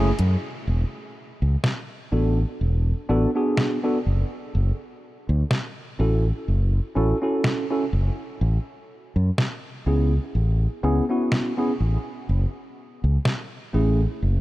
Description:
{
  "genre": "vaporwave",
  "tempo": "62 BPM",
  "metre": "4/4",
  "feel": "swing 54% on 16ths",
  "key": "unclear",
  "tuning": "A4 = 440 Hz",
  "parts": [
    { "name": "tine electric piano", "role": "accompaniment", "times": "0.0-14.0 s", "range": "A3 to A4", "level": "-26 LUFS", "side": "equal", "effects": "wide subtle chorus, analog delay" },
    { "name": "fingered electric bass", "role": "bass", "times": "0.0-14.4 s", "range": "E1 to F#2", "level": "-20 LUFS", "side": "equal", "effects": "none" },
    { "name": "detuned 8-bit digital drum machine", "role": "drums", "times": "0.2-13.5 s", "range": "hi-hat, snare drum", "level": "-27 LUFS", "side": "equal", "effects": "overdrive" }
  ],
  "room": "light reverb",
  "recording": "dark, warm production",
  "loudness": "-21 LUFS",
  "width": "side -17 dB against mid",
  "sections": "0.7-14.4 A section",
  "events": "band accent 0.0",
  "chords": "0.0 F#m9; 0.7 E7sus4; 4.1 Dmaj7/F# (rootless); 8.4 Amaj9; 12.3 F#m9"
}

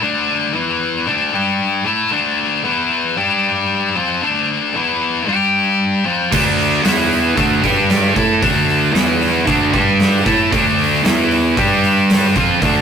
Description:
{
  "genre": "quiet-loud alternative rock",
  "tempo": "114 BPM",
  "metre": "4/4",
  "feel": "straight",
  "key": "D minor",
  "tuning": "A4 = 441 Hz",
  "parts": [
    { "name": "high-gain distorted guitar", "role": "riff", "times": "0.0-12.8 s", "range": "D3 to A4", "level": "-16 LUFS", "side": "left 3 dB", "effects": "distortion" },
    { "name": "scooped high-gain guitar", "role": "riff", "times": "6.3-12.8 s", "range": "D3 to A4", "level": "-18 LUFS", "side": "right 4 dB", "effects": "distortion" },
    { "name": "thick fuzz guitar", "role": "riff", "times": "6.3-12.8 s", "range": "D3 to A4", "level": "-23 LUFS", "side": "right 5 dB", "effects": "distortion" },
    { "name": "fuzz fingered electric bass", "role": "bass", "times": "6.3-12.8 s", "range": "D2 to A2", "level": "-19 LUFS", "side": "right 1 dB", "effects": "overdrive" },
    { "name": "big rock drum kit", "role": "drums", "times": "6.3-12.7 s", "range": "crash cymbal, hi-hat, kick drum, snare drum", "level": "-19 LUFS", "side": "equal", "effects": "none" }
  ],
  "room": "moderate studio ambience, RT60 0.5 s",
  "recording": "rough rehearsal-room recording, warm saturation",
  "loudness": "-13 LUFS",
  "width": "side -7 dB against mid",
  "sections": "0.0-12.8 A section",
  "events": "none",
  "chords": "0.0 D5; 0.5 E5; 1.1 D5; 1.3 G5; 1.9 D5; 2.6 E5; 3.2 G5; 4.0 Dm; 4.7 E5; 5.3 G5; 6.1 Dm; 6.8 E5; 7.4 D5; 7.6 G5; 8.2 D5; 8.9 E5; 9.5 D5; 9.7 G5; 10.3 D5; 11.0 E5; 11.6 G5"
}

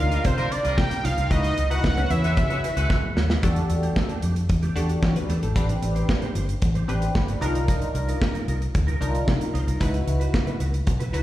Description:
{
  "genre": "early-eighties boogie funk",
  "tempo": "113 BPM",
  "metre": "4/4",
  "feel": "straight",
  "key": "unclear",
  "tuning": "A4 = 438 Hz",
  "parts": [
    { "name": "fat analog lead", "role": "melody", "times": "0.0-2.9 s", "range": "C5 to G5", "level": "-27 LUFS", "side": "right 1 dB", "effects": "plate reverb, slapback echo, tape echo" },
    { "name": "funky polysynth comp", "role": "accompaniment", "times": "0.0-11.2 s", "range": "C4 to C#5", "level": "-30 LUFS", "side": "left 1 dB", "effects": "chorus, plate reverb, slapback echo" },
    { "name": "mellow electric guitar", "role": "riff", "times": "0.0-11.2 s", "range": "A3 to C#5", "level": "-36 LUFS", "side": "right 3 dB", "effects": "ensemble chorus, slapback echo" },
    { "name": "vintage muted fingered electric bass", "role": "bass", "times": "0.0-11.2 s", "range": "G1 to E3", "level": "-23 LUFS", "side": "equal", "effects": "none" },
    { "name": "bright horn section", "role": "second line", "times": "0.1-3.1 s", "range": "G3 to B4", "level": "-31 LUFS", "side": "equal", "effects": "plate reverb, slapback echo" },
    { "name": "modern studio drum kit", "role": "drums", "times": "0.1-11.2 s", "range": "hi-hat, kick drum, snare drum", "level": "-25 LUFS", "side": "equal", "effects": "none" }
  ],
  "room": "light reverb",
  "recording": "live gig heard through the venue's PA, recital hall reverb",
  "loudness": "-21 LUFS",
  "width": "side -14 dB against mid",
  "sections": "0.0-3.4 A section; 3.4-11.2 B section",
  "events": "drum fill 2.9-3.4",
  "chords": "0.0 Cm11; 1.3 C#m11; 3.4 Em11; 5.6 Am11; 7.4 Cm11; 9.8 C#m11"
}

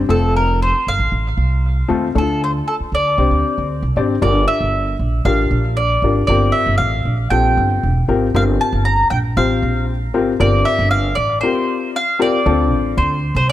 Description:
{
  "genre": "uptempo 1960s-style soul",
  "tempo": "116 BPM",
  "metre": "4/4",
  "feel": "straight",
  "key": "unclear",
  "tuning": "A4 = 436 Hz",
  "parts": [
    { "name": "upright bass", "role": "bass", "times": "0.0-13.5 s", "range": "E1 to Eb2", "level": "-18 LUFS", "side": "right 1 dB", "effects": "none" },
    { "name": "mandolin", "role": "melody", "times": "0.1-13.5 s", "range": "A4 to Bb5", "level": "-19 LUFS", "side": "equal", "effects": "tape echo" },
    { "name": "warm baby grand piano", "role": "accompaniment", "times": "0.1-13.2 s", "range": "A3 to D5", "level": "-20 LUFS", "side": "left 5 dB", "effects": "none" }
  ],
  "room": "light reverb, small room ambience",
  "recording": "dark, warm production",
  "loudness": "-14 LUFS",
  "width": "side -13 dB against mid",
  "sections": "0.0-4.2 A section; 4.2-12.5 B section; 12.5-13.5 C section",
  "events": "none",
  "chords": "0.1 F; 2.2 Dm; 3.2 Csus2; 4.2 Gm7; 6.3 C7sus4; 12.5 Dm7"
}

